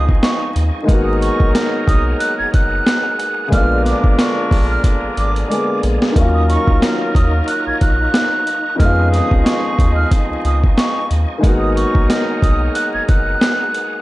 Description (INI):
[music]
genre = hip hop, boom-bap hip-hop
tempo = 91 BPM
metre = 4/4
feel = swing 56% on 16ths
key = unclear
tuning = A4 = 440 Hz
[part]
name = breathy silver concert flute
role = melody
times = 0.0-14.0 s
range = Db6 to Ab6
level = -21 LUFS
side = right 2 dB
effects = high-pass filter, low-pass filter
[part]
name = warm grand piano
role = accompaniment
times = 0.0-14.0 s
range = F2 to Ab4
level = -21 LUFS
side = left 2 dB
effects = cassette tape, high-pass filter, low-pass filter
[part]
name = bright tonewheel organ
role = sustained chords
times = 0.0-14.0 s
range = Eb4 to Db6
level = -29 LUFS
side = right 1 dB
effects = chorus vibrato, fast rotary speaker, high-pass filter, low-pass filter
[part]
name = clear horn section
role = stabs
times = 0.0-13.7 s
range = F3 to Bb4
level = -25 LUFS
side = right 1 dB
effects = high-pass filter, low-pass filter, analog delay
[part]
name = round analog bass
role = bass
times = 0.0-13.3 s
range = Gb1 to F2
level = -18 LUFS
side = equal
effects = none
[part]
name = boom bap sampler-style drum kit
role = drums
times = 0.1-13.9 s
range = hi-hat, kick drum, snare drum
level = -15 LUFS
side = equal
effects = none
[sound]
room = little or no reverb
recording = dry, gritty hardware recording, vinyl crackle, nothing above 10.6 kHz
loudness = -13 LUFS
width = side -18 dB against mid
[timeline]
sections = 0.0-14.0 A section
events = drum fill 4.8-6.2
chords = 0.0 Db9; 0.9 Abm9; 3.5 Bb7b9; 6.2 Ebm9; 8.8 Db9; 11.4 Abm9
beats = 0.23 | 0.89 1.54 2.20 2.86 | 3.52 4.18 4.84 5.50 | 6.16 6.82 7.48 8.14 | 8.80 9.46 10.12 10.78 | 11.44 12.09 12.75 13.41